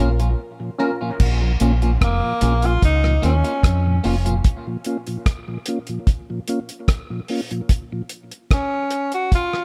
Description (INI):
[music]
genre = dub reggae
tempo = 74 BPM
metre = 4/4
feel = straight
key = Bb minor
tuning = A4 = 441 Hz
[part]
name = electric guitar at the edge of break-up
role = accompaniment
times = 0.0-4.3 s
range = Bb3 to F4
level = -31 LUFS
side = equal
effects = dub echo
[part]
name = mellow tonewheel organ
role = accompaniment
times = 0.0-8.0 s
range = Bb2 to F4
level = -29 LUFS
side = equal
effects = slow rotary speaker, dub echo
[part]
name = filtered dub chord stab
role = stabs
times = 0.0-1.0 s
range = Db4 to Bb4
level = -30 LUFS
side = equal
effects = phaser, dub echo
[part]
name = deep dub fingered electric bass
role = bass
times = 0.0-4.4 s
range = F1 to F2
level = -20 LUFS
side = equal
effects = none
[part]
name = cloth-damped thuddy drum kit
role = drums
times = 0.2-9.6 s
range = crash cymbal, hi-hat, kick drum, rim click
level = -22 LUFS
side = equal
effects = none
[part]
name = mellow tenor saxophone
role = melody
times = 2.0-9.6 s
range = Bb3 to Gb4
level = -25 LUFS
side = equal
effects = dub echo
[sound]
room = light reverb, studio reverb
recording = none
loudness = -20 LUFS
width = mono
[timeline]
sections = 0.0-1.2 A section; 1.2-9.6 B section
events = break 0.0-1.2, 4.4-9.6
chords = 0.0 Bbm; 7.7 Bb5